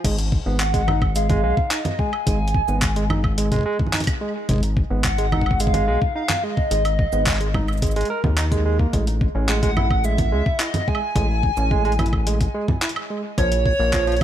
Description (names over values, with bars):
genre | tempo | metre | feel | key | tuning
IDM | 108 BPM | 4/4 | straight | G# dorian | A4 = 440 Hz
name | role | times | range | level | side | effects
barky tine electric piano | arpeggios | 0.0-14.2 s | E#3 to A#4 | -27 LUFS | right 3 dB | digital delay
rubbery square bass | bass | 0.0-14.2 s | G#1 to D#2 | -21 LUFS | left 1 dB | none
electronic kick drum | drums | 0.0-14.2 s | none | -23 LUFS | left 1 dB | none
jungle sampler-style drum kit | drums | 0.0-14.2 s | cabasa, congas, crash cymbal, handclaps, hi-hat, woodblock | -26 LUFS | right 1 dB | low-pass filter on hats, low-pass filter on perc, low-pass filter on cymbals, low-pass filter on snare, tape echo
warbly nostalgic lead | melody | 0.6-14.2 s | C#5 to G#5 | -25 LUFS | equal | wide subtle chorus, tape echo
room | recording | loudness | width
digital ambience | none | -18 LUFS | side -11 dB against mid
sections
0.0-14.2 A section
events
none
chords
0.0 G#5; 8.9 Amaj7(no3); 13.4 A#m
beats
| 0.04 0.60 1.16 1.71 | 2.27 2.82 3.38 3.93 | 4.49 5.04 5.60 6.16 | 6.71 7.27 7.82 8.38 | 8.93 9.49 10.04 10.60 | 11.16 11.71 12.27 12.82 | 13.38 13.93